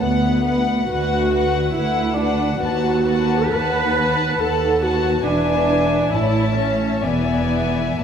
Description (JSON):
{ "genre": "classical, slow romantic movement for string orchestra", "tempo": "58-72 BPM", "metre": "3/4", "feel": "rubato", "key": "unclear", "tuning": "A4 = 440 Hz", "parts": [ { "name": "warm chamber violin section", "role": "melody", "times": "0.0-8.0 s", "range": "F#5 to A5", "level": "-27 LUFS", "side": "left 7 dB", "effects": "none" }, { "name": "warm chamber violin section", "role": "second line", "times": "0.0-8.0 s", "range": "B4 to F#5", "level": "-25 LUFS", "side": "left 3 dB", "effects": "none" }, { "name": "warm chamber viola section", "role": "accompaniment", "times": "0.0-8.0 s", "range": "B3 to B4", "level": "-20 LUFS", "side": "right 1 dB", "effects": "none" }, { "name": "clear chamber double bass section", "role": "bass", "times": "0.0-8.0 s", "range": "E1 to D#2", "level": "-24 LUFS", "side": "right 2 dB", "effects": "none" }, { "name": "dark chamber cello section", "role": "bass", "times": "0.0-8.0 s", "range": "D2 to A2", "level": "-25 LUFS", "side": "right 2 dB", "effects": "none" } ], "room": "moderate scoring stage reverb, RT60 1.5 s", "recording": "none", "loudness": "-16 LUFS", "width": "side -8 dB against mid", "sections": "0.0-8.0 A section", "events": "none", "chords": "0.0 Bm/D; 2.6 B7/D#; 5.2 E7; 6.1 A; 7.0 E7" }